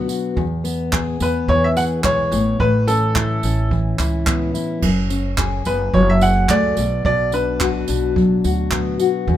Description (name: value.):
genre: acoustic pop.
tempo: 108 BPM.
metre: 4/4.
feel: swing 55% on 16ths.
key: unclear.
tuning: A4 = 439 Hz.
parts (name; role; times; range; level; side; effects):
bright upright piano; melody; 0.0-8.1 s; A4 to F#5; -19 LUFS; right 1 dB; none.
fingerpicked steel-string acoustic guitar; accompaniment; 0.0-9.4 s; E2 to G#4; -20 LUFS; left 2 dB; none.
upright bass; bass; 0.0-9.4 s; F#1 to E2; -22 LUFS; right 1 dB; none.
jazz brush drum kit; drums; 0.1-9.4 s; crash cymbal, handclaps, kick drum, tambourine; -24 LUFS; right 2 dB; none.
room: little or no reverb.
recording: minimal, uncompressed stereo recording.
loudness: -16 LUFS.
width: side -12 dB against mid.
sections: 0.0-4.8 A section; 4.8-9.4 A section.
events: none.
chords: 0.4 E; 2.3 Aadd9; 4.8 F#madd9; 6.8 Bm.